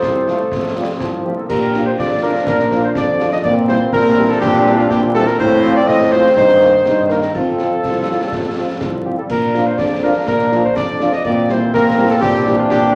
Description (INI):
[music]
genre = military-style march for wind band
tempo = 123 BPM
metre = 2/4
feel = straight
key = Bb major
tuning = A4 = 441 Hz
[part]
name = dark cornet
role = melody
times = 0.0-12.9 s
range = F4 to Eb5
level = -20 LUFS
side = equal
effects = none
[part]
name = glockenspiel with rubber mallets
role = second line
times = 0.0-1.0 s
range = C6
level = -36 LUFS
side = equal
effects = none
[part]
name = warm woodwind section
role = second line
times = 0.0-12.9 s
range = F4 to Eb5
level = -26 LUFS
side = equal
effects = none
[part]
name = clear trombone section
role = sustained chords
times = 0.0-12.9 s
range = C3 to Eb4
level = -24 LUFS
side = equal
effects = none
[part]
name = clear tuba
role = bass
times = 0.0-12.9 s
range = C2 to Bb2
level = -22 LUFS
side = equal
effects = none
[part]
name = concert snare drum, concert bass drum and clash cymbals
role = drums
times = 0.0-12.9 s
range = none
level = -28 LUFS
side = equal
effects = none
[part]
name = dark French horn section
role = accompaniment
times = 0.3-12.5 s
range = F3 to F4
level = -26 LUFS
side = equal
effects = none
[part]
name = warm euphonium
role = second line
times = 1.5-12.9 s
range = Bb3 to G4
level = -22 LUFS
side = equal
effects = none
[sound]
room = wet large studio reverb, RT60 1.2 s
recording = vinyl crackle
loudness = -15 LUFS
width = mono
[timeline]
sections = 0.0-1.5 A section; 1.5-12.9 B section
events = none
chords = 0.0 F; 1.5 Bb; 3.4 C7/Bb; 5.4 F/A; 6.4 Eb/G; 7.3 F; 9.3 Bb; 11.2 C7/Bb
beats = 0.03 | 0.52 1.00 | 1.49 1.98 | 2.47 2.96 | 3.44 3.93 | 4.42 4.91 | 5.39 5.88 | 6.37 6.86 | 7.34 7.83 | 8.32 8.81 | 9.29 9.78 | 10.27 10.76 | 11.24 11.73 | 12.22 12.70